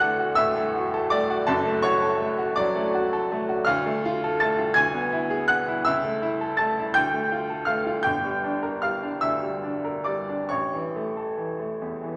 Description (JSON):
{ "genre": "classical, romantic character piece for solo piano", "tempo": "45-56 BPM (dotted quarters)", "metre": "6/8", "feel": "rubato", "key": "D major, D minor from 3.7 s", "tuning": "A4 = 439 Hz", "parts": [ { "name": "bright baby grand piano", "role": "solo", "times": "0.0-12.2 s", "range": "F#1 to A6", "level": "-25 LUFS", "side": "equal", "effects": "none" } ], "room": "wet recital hall reverb, RT60 1.7 s", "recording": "none", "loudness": "-25 LUFS", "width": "mono", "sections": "0.0-12.2 A section", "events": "none", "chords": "0.0 D; 1.5 D/F#; 3.7 Dm; 4.8 E7/D; 5.9 A/C#; 7.0 Dm; 8.0 Gm; 10.5 A" }